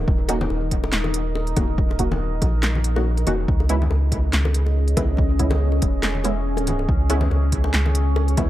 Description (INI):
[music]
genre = deep dubstep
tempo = 141 BPM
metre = 4/4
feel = swing 56% on 16ths, half-time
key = unclear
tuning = A4 = 442 Hz
[part]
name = deep dark ambient pad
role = sustained chords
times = 0.0-8.5 s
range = Db4 to Eb5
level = -28 LUFS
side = equal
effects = chorus, built-in reverb
[part]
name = soft dub sub bass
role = bass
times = 0.0-8.5 s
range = Eb1 to Db2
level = -21 LUFS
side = equal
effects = none
[part]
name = electronic kick drum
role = drums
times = 0.1-8.5 s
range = none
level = -22 LUFS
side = equal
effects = none
[part]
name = filtered dub chord stab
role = stabs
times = 0.3-8.4 s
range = Ab3 to Gb4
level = -28 LUFS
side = right 1 dB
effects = analog chorus, dub echo
[part]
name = deep house drum kit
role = drums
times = 0.3-8.5 s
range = handclaps, hi-hat, snare drum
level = -25 LUFS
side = equal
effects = none
[part]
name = bongos and congas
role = percussion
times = 0.3-8.5 s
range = none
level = -30 LUFS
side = left 3 dB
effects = dub echo
[sound]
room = little or no reverb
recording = dark, warm production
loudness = -18 LUFS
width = side -14 dB against mid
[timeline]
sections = 0.0-8.5 A section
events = none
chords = 0.0 Ebm7; 3.5 Dbm7